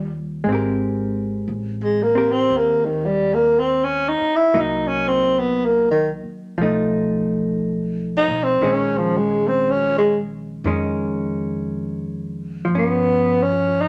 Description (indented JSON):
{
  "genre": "jazz ballad",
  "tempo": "59 BPM",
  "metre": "4/4",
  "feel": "swing 67% on 8ths",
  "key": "Ab major",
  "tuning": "A4 = 439 Hz",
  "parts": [
    { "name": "growling tenor saxophone", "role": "melody", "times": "0.0-13.9 s", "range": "Eb3 to Fb4", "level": "-20 LUFS", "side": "equal", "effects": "none" },
    { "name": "hollow-body jazz guitar", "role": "accompaniment", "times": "0.0-13.9 s", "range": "Eb3 to Bb4", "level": "-25 LUFS", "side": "equal", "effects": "none" },
    { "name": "upright bass", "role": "bass", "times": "0.0-13.9 s", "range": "Ab1 to G2", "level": "-33 LUFS", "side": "equal", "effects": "none" }
  ],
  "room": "light reverb",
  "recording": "none",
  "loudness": "-20 LUFS",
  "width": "mono",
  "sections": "0.5-13.9 A section",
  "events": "tenor saxophone solo 0.5-13.9",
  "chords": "0.5 Abmaj9; 4.5 Cm7b5; 6.6 B7#11; 8.6 Bbm7; 12.7 G7#11"
}